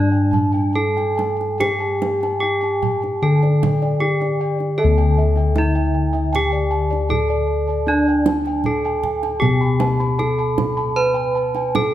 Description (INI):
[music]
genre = Javanese gamelan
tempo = 77 BPM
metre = 4/4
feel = uneven beats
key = D pelog barang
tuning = A4 = 442 Hz
[part]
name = gamelan-type bronze metallophone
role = melody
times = 0.0-11.9 s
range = D4 to B4+20c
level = -20 LUFS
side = right 2 dB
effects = none
[part]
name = gamelan-type bossed gongs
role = arpeggios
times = 0.0-11.9 s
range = D5 to B5+20c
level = -27 LUFS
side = left 4 dB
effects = none
[part]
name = gamelan-type bronze metallophone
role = arpeggios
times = 0.0-11.9 s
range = D5 to B5+20c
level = -29 LUFS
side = right 6 dB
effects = none
[part]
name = gamelan-type bossed gongs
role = bass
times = 0.0-11.9 s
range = D2 to B4+20c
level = -20 LUFS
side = left 2 dB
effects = none
[part]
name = kendang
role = percussion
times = 0.3-11.9 s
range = none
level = -26 LUFS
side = right 5 dB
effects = none
[sound]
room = light reverb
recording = none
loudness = -16 LUFS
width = side -12 dB against mid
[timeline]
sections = 0.0-4.8 A section; 4.8-11.9 B section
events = none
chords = none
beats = 0.76 | 1.60 2.42 3.23 4.03 | 4.80 5.57 6.34 7.11 | 7.88 8.65 9.43 10.20 | 10.97 11.75